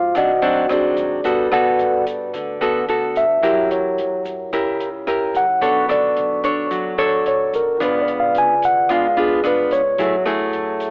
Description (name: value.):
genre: bossa nova.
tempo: 110 BPM.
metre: 4/4.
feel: straight.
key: unclear.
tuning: A4 = 440 Hz.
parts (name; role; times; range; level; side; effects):
mellow tine electric piano; melody; 0.0-10.2 s; D4 to G#5; -20 LUFS; equal; cassette tape.
nylon-string guitar; accompaniment; 0.0-10.9 s; G#2 to C#5; -23 LUFS; equal; cassette tape.
vibraphone with soft mallets; accompaniment; 0.0-10.9 s; D4 to D6; -29 LUFS; equal; cassette tape.
upright bass; bass; 0.0-10.9 s; G#1 to G#2; -43 LUFS; equal; none.
open jazz drum kit; drums; 0.2-10.9 s; hi-hat, kick drum, rim click; -36 LUFS; equal; cassette tape.
egg shaker; percussion; 0.2-10.9 s; none; -50 LUFS; equal; none.
room: light reverb, studio ambience.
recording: home recording on cassette, telephone sound.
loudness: -18 LUFS.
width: mono.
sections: 0.0-10.9 A section.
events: tine electric piano solo 0.0-10.9.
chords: 0.0 G#7#11; 1.2 Gmaj9; 3.4 F#7b9; 5.6 Bm9; 7.8 C#7b9; 10.0 F#m9.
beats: 0.15 0.70 | 1.25 1.79 2.34 2.89 | 3.44 3.98 4.53 5.08 | 5.62 6.17 6.71 7.26 | 7.80 8.35 8.90 9.44 | 9.99 10.53.